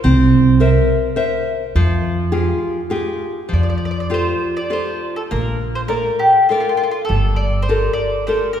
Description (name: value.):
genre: italian folk, Italian serenade.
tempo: 101 BPM.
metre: 3/4.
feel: straight.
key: F harmonic minor, F major from 3.5 s.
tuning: A4 = 437 Hz.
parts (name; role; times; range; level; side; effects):
nylon-string guitar; accompaniment; 0.0-8.6 s; F3 to E5; -19 LUFS; left 1 dB; none.
upright bass; bass; 0.0-7.9 s; G1 to F2; -18 LUFS; right 2 dB; none.
mandolin; melody; 3.5-8.6 s; F4 to D5; -19 LUFS; left 1 dB; tape echo.
room: wet concert hall reverb, RT60 2.0 s.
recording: heard from further back in the room.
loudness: -15 LUFS.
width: side -9 dB against mid.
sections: 0.0-3.5 A section; 3.5-8.6 B section.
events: none.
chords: 0.0 C7; 1.8 Fmadd9; 3.5 Fadd9; 5.3 Bbmaj7; 7.1 Gmadd9.